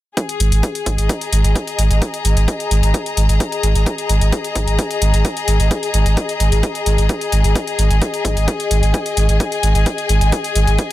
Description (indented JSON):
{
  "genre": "driving peak-time techno",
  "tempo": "130 BPM",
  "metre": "4/4",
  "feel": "straight",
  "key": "unclear",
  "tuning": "A4 = 440 Hz",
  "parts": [
    { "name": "electronic hi-hat", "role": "drums", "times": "0.2-10.9 s", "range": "none", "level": "-25 LUFS", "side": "left 3 dB", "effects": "overdrive, sidechain pumping on hats" },
    { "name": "electronic kick drum", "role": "drums", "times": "0.2-10.9 s", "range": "none", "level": "-23 LUFS", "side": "right 1 dB", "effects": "overdrive, high-pass filter on kick" },
    { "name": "rich studio string section", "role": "texture", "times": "0.2-10.9 s", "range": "G#4 to A#5", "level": "-21 LUFS", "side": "left 4 dB", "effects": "sidechain pumping" },
    { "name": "saturated sub bass", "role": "bass", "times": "0.4-10.8 s", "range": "G#1", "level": "-14 LUFS", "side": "equal", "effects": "sidechain pumping, low-pass filter" }
  ],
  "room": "little or no reverb",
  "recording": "none",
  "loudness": "-14 LUFS",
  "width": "side -15 dB against mid",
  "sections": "0.2-10.9 A section",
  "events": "none",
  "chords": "0.2 G#5"
}